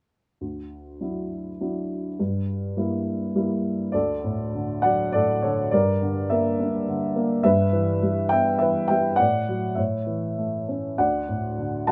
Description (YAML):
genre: classical, lyrical solo piano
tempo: 102 BPM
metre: 3/4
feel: rubato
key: D major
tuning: A4 = 441 Hz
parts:
  - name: dark upright piano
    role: solo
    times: 0.4-11.9 s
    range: D2 to A5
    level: -24 LUFS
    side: equal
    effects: none
room: moderate studio ambience, RT60 0.5 s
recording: none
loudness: -24 LUFS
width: mono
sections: 0.4-3.9 A section; 3.9-11.9 B section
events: none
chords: 0.4 Dadd9; 2.2 Gm6; 3.9 D; 5.7 Gm6; 7.4 Em/G; 9.2 D/A; 9.8 A; 11.0 D